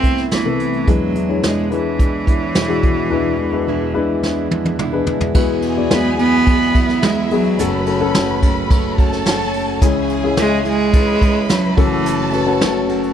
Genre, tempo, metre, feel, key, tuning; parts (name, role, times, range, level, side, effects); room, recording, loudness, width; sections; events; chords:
piano-driven pop; 107 BPM; 4/4; straight; E mixolydian; A4 = 440 Hz
clear cello; melody; 0.0-12.3 s; E3 to C4; -19 LUFS; right 2 dB; slapback echo
dark concert grand piano; accompaniment; 0.0-13.1 s; F#1 to D5; -19 LUFS; left 6 dB
fingerpicked plugged-in steel-string acoustic guitar; riff; 0.0-13.1 s; E2 to F#4; -23 LUFS; right 11 dB
vintage brush drum kit; drums; 0.0-13.1 s; crash cymbal, hi-hat, kick drum, ride cymbal, snare drum, toms; -18 LUFS; equal
warm studio violin section; second line; 5.3-13.1 s; E4 to B5; -25 LUFS; right 1 dB
small room ambience; -14 LUFS; side -9 dB against mid
0.0-5.3 A section; 5.3-13.1 B section
drum fill 4.2-5.3
0.0 Amadd9/C; 0.9 E7; 5.3 Eadd9; 7.6 F#m; 9.8 C#m; 11.8 F#m